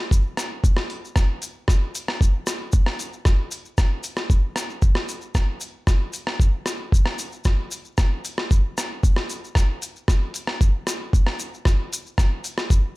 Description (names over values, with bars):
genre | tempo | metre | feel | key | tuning
highlife | 114 BPM | 4/4 | straight | none | none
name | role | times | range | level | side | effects
boom bap sampler-style drum kit | drums | 0.1-12.8 s | hi-hat, kick drum, rim click | -20 LUFS | equal | none
maracas | percussion | 0.1-12.8 s | none | -32 LUFS | left 3 dB | none
room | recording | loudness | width
little or no reverb | none | -20 LUFS | side -21 dB against mid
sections
0.0-13.0 A section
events
none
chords
none